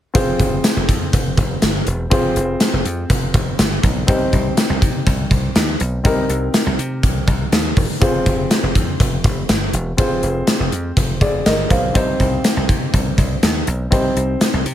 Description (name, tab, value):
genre	1980s-style pop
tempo	122 BPM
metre	4/4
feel	straight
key	unclear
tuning	A4 = 440 Hz
part	warm concert grand piano	accompaniment	0.1-14.7 s	C4 to F5	-22 LUFS	left 1 dB	none
part	dry thumbed slap bass	bass	0.1-14.7 s	E1 to C3	-21 LUFS	equal	none
part	gated 80s drum kit	drums	0.1-14.7 s	hi-hat, kick drum, snare drum	-17 LUFS	equal	none
part	tambourine	percussion	0.6-14.5 s	none	-32 LUFS	right 9 dB	none
room	light reverb, studio ambience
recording	none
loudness	-15 LUFS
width	side -11 dB against mid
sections	0.1-14.7 A section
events	none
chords	0.1 Fm; 4.1 Cm; 8.0 Fm; 11.9 Cm